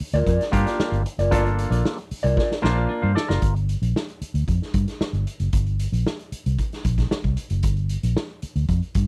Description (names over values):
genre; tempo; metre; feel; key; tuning
funk; 114 BPM; 4/4; straight; G minor; A4 = 442 Hz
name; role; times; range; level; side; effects
vintage muted fingered electric bass; bass; 0.0-9.1 s; F#1 to G2; -24 LUFS; equal; none
vintage drum kit; drums; 0.0-9.1 s; hi-hat, kick drum, snare drum; -28 LUFS; equal; none
electric guitar at the edge of break-up; accompaniment; 0.1-3.4 s; F4 to D5; -28 LUFS; equal; wah
auto-wah clav; stabs; 0.5-3.5 s; Bb3 to F5; -28 LUFS; equal; overdrive
room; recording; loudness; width
little or no reverb; none; -23 LUFS; mono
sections
0.0-3.4 A section; 3.4-9.1 B section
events
drum fill 2.4-3.4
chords
0.0 Gm7; 3.4 Gm